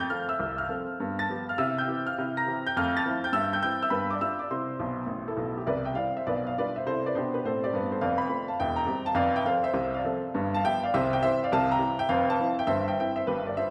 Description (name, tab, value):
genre	jazz, stride piano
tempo	206 BPM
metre	4/4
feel	swing 66% on 8ths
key	C major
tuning	A4 = 440 Hz
part	clear upright piano	solo	0.0-13.7 s	E1 to Bb6	-28 LUFS	equal	none
room	wet recital hall reverb, RT60 1.5 s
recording	recorded in a church or concert hall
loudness	-28 LUFS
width	mono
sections	0.0-5.7 A section; 5.7-13.7 A section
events	upright piano fill 4.8-5.7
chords	0.0 F; 1.0 G9; 1.6 C; 2.2 C7; 2.7 Fmaj7; 3.3 C/G; 3.9 G7; 4.5 C; 6.3 G7/B; 6.8 C; 8.0 F; 8.6 C7/E; 9.2 F; 10.3 G7; 10.9 C; 11.5 C7; 12.1 Fmaj7; 12.7 C/G